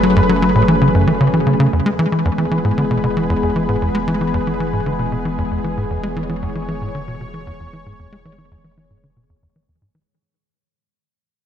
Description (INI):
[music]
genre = ambient, sequencer-driven space music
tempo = 115 BPM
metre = 4/4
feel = straight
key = unclear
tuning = A4 = 442 Hz
[part]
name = lush unison pad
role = sustained chords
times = 0.0-10.0 s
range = E3 to C#5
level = -20 LUFS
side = left 1 dB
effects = chorus
[part]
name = tight sequencer bass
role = riff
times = 0.0-10.0 s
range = E2 to G#3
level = -17 LUFS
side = equal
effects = tape echo
[part]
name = warm sub bass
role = bass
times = 0.0-10.1 s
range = E1 to F#1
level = -30 LUFS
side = equal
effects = none
[sound]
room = moderate plate reverb, RT60 3.3 s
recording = none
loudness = -15 LUFS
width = side -9 dB against mid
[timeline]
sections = 0.0-1.7 A section; 1.7-10.1 B section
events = fade-out 1.7-10.1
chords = 0.0 F#madd9; 1.7 E